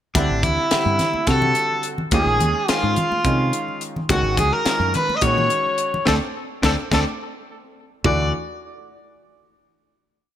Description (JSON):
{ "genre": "electric jazz fusion", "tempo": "213 BPM (eighths)", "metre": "7/8", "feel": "straight", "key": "unclear", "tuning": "A4 = 440 Hz", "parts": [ { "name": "bright grand piano", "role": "accompaniment", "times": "0.1-8.3 s", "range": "D3 to F#4", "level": "-26 LUFS", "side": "equal", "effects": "none" }, { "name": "tight funk drum kit", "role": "drums", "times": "0.1-8.2 s", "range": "hi-hat, kick drum, snare drum, toms", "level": "-24 LUFS", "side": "equal", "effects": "none" }, { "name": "dark trumpet", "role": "melody", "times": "0.2-8.3 s", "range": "D4 to D#5", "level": "-23 LUFS", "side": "equal", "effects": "ping-pong delay" }, { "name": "crunchy overdriven guitar", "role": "second line", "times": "0.2-8.3 s", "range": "D4 to D#5", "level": "-25 LUFS", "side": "left 1 dB", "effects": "none" }, { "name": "mellow fretless electric bass", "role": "bass", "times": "0.2-8.3 s", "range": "G#1 to C3", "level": "-22 LUFS", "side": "equal", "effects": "wide subtle chorus" }, { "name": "congas", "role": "percussion", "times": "0.2-8.3 s", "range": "none", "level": "-28 LUFS", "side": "left 1 dB", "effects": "none" } ], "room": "light reverb, small room ambience", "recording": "bright 1980s-style digital production", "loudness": "-17 LUFS", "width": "side -10 dB against mid", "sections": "0.2-8.1 A section; 8.1-10.0 final chord", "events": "band accent 6.1-8.1; drum fill 6.4-8.1; grand piano fill 7.2-8.1", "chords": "0.2 D9sus4; 2.1 Eb9sus4; 4.1 C#sus24; 6.1 D5; 8.1 D" }